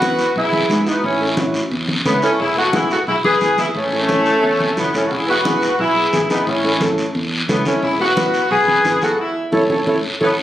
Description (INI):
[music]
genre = latin, cumbia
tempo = 177 BPM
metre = 4/4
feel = straight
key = E major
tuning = A4 = 440 Hz
[part]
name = mellow saxophone section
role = melody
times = 0.0-10.4 s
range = A3 to G#4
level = -17 LUFS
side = left 1 dB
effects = none
[part]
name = accordion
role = second line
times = 0.0-10.3 s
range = C#4 to C#5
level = -22 LUFS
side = equal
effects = light tremolo tuning
[part]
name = nylon-string guitar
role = accompaniment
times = 0.0-10.3 s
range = B3 to B4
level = -22 LUFS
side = equal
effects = none
[part]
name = fingered electric bass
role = bass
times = 0.0-10.3 s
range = E1 to G#2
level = -26 LUFS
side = equal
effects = none
[part]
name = congas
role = percussion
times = 0.0-10.3 s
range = none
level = -26 LUFS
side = equal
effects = none
[part]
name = guiro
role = percussion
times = 0.0-10.3 s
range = none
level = -26 LUFS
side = equal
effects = none
[sound]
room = wet large studio reverb, RT60 1.3 s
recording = recorded on a phone in the room, club reverb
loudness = -14 LUFS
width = side -12 dB against mid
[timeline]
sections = 0.0-10.4 A section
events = band accent 9.2-10.4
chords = 0.0 E; 1.0 A; 2.4 E; 3.8 A; 5.1 E; 6.5 A; 7.8 E; 9.2 A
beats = 0.02 0.36 0.70 | 1.04 1.38 1.72 2.06 | 2.39 2.73 3.07 3.41 | 3.75 4.09 4.43 4.77 | 5.11 5.45 5.79 6.13 | 6.47 6.81 7.15 7.49 | 7.83 8.17 8.51 8.85 | 9.19 9.53 9.87 10.21